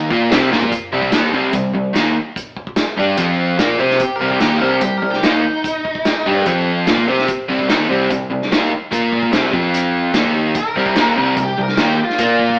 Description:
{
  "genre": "classic rock",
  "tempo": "147 BPM",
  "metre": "4/4",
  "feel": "straight",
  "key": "C minor",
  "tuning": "A4 = 440 Hz",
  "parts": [
    { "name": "overdriven semi-hollow guitar", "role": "riff", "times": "0.0-12.6 s", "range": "C3 to C5", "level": "-20 LUFS", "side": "equal", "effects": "none" },
    { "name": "overdriven semi-hollow guitar", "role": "riff", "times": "0.0-12.6 s", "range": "C3 to C5", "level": "-22 LUFS", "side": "equal", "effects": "none" },
    { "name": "overdriven picked electric bass", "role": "bass", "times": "0.0-12.6 s", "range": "C2 to C3", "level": "-29 LUFS", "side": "equal", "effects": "none" },
    { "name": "vintage drum kit", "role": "drums", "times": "0.1-12.6 s", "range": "hi-hat, kick drum, snare drum, toms", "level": "-23 LUFS", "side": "equal", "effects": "none" },
    { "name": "octave-fuzz lead guitar", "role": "second line", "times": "4.0-6.4, 10.6-12.6 s", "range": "Eb4 to Bb4", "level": "-22 LUFS", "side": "equal", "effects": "distortion" }
  ],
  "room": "wet stone room reverb, RT60 1.0 s",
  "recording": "band playing live in one room, AM radio sound",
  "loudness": "-16 LUFS",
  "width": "mono",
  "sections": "0.7-12.6 A section",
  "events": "drum fill 0.5",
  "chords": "0.1 C5; 0.7 Cm; 3.2 F5; 3.6 Cm; 6.5 F5; 6.9 Cm; 8.9 Bb5; 9.3 C5; 9.5 F5; 10.1 Eb5; 10.8 Cm; 12.2 Bb5",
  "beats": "0.32 | 0.73 1.14 1.55 1.96 | 2.37 2.78 3.19 3.60 | 4.01 4.42 4.83 5.24 | 5.65 6.06 6.47 6.88 | 7.28 7.69 8.10 8.51 | 8.92 9.33 9.74 10.15 | 10.56 10.96 11.37 11.78 | 12.19"
}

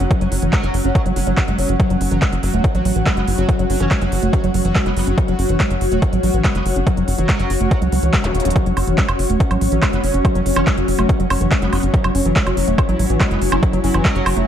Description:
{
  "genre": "psychedelic trance",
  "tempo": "142 BPM",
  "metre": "4/4",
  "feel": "straight",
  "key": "unclear",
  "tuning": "A4 = 439 Hz",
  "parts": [
    { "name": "pulsing gated texture", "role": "sustained chords", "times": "0.0-14.5 s", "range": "F#3 to F#4", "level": "-25 LUFS", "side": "equal", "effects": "chorus, built-in reverb, sidechain pumping" },
    { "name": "liquid acid bass", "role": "riff", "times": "0.0-14.5 s", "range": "E3 to F#4", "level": "-23 LUFS", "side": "moving between left 5 dB and right 5 dB", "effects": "chorus, auto-pan, sidechain pumping, ping-pong delay" },
    { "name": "tight sequencer bass", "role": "bass", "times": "0.0-14.4 s", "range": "E1 to C#2", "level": "-20 LUFS", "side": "equal", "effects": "none" },
    { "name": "big-room dance drum kit", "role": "drums", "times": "0.0-14.5 s", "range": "handclaps, hi-hat, woodblock", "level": "-24 LUFS", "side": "right 2 dB", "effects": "overdrive" },
    { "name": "granular cloud pad", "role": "texture", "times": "0.0-14.5 s", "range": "C#4 to G#5", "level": "-23 LUFS", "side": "left 1 dB", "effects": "built-in reverb, sidechain pumping" },
    { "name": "electronic kick drum", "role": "drums", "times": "0.1-14.1 s", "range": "none", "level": "-18 LUFS", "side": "equal", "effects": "overdrive" },
    { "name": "metallic wobble bass", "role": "second line", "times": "0.4-14.5 s", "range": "F#3 to C#4", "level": "-32 LUFS", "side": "right 2 dB", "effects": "lush chorus, sidechain pumping, high-pass filter, ping-pong delay" },
    { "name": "zap", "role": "sound effects", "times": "8.2-8.3 s", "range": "none", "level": "-29 LUFS", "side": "right 1 dB", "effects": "none" }
  ],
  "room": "digital ambience",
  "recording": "dark, warm production",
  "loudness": "-15 LUFS",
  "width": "side -9 dB against mid",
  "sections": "0.0-14.5 A section",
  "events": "filter sweep on acid bass 0.0-14.5; drum fill 8.3",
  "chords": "0.0 F#5",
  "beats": "| 0.11 0.53 0.95 1.37 | 1.80 2.22 2.64 3.06 | 3.49 3.91 4.33 4.75 | 5.18 5.60 6.02 6.44 | 6.87 7.29 7.71 8.13 | 8.56 8.98 9.40 9.82 | 10.25 10.67 11.09 11.52 | 11.94 12.36 12.78 13.21 | 13.63 14.05"
}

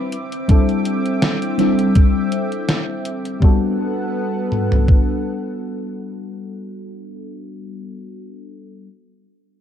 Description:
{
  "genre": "vaporwave",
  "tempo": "82 BPM",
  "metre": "4/4",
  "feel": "swing 55% on 16ths",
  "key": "G major",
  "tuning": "A4 = 440 Hz",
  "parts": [
    { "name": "mellow FM electric piano", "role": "accompaniment", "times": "0.0-8.9 s", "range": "G3 to B4", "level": "-22 LUFS", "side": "left 2 dB", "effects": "phaser, analog chorus, cassette tape, analog delay" },
    { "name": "lush unison pad", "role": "sustained chords", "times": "0.0-7.1 s", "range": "B3 to D6", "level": "-26 LUFS", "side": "right 1 dB", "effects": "chorus" },
    { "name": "gated 80s digital drum machine", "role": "drums", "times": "0.1-3.4 s", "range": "hi-hat, snare drum", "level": "-23 LUFS", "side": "right 1 dB", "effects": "gated reverb, gated reverb snare, overdrive" },
    { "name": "detuned 8-bit digital drum machine", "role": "drums", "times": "0.5-5.1 s", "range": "kick drum, toms", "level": "-13 LUFS", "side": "equal", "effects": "none" }
  ],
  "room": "little or no reverb",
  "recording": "dark, warm production",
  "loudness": "-16 LUFS",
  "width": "side -9 dB against mid",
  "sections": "0.0-3.4 A section; 3.4-6.3 B section",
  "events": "none",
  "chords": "0.1 D9sus4; 3.4 Gmaj9",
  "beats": "| 0.49 1.22 1.95 2.69 | 3.42 4.15 4.88 5.61"
}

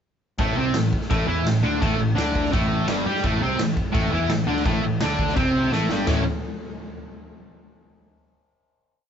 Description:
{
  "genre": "garage rock duo or trio",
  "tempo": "169 BPM",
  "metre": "4/4",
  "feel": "straight",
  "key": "unclear",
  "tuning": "A4 = 440 Hz",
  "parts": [
    { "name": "cranked stack guitar", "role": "riff", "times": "0.4-6.2 s", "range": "G2 to G4", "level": "-22 LUFS", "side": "equal", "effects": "overdrive" },
    { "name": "fuzz picked electric bass", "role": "bass", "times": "0.4-6.2 s", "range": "G1 to G2", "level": "-27 LUFS", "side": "equal", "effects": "overdrive" },
    { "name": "raw garage drum kit", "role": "drums", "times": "0.4-6.2 s", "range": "crash cymbal, kick drum, ride cymbal, snare drum, toms", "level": "-26 LUFS", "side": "equal", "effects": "none" }
  ],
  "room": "moderate studio reverb, RT60 0.6 s",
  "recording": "band playing live in one room, nothing above 7.7 kHz",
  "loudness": "-20 LUFS",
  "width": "side -8 dB against mid",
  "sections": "0.4-6.1 riff; 6.1-7.5 final chord",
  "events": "drum fill 5.7-6.1",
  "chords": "0.4 A5; 6.1 A",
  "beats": "| 0.39 0.75 1.10 1.46 | 1.81 2.17 2.53 2.88 | 3.24 3.59 3.95 4.30 | 4.66 5.01 5.37 5.72 | 6.08"
}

